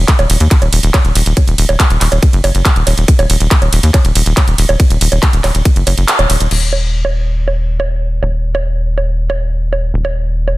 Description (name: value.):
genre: psychedelic trance.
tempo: 140 BPM.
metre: 4/4.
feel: straight.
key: Eb minor.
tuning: A4 = 440 Hz.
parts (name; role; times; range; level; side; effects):
tight sequencer bass; bass; 0.0-10.6 s; Eb1 to Eb2; -13 LUFS; equal; none.
electronic kick drum; drums; 0.1-5.7 s; none; -10 LUFS; equal; overdrive, studio reverb.
techno drum kit; drums; 0.1-10.6 s; bongos, crash cymbal, handclaps, hi-hat, ride cymbal; -16 LUFS; right 2 dB; overdrive, studio reverb.
room: little or no reverb.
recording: dense, heavily limited modern master.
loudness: -10 LUFS.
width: side -18 dB against mid.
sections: 0.0-6.5 A section; 6.5-10.6 B section.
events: drop 0.0-6.5; kick drops out 6.1-6.5; band accent 6.1.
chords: none.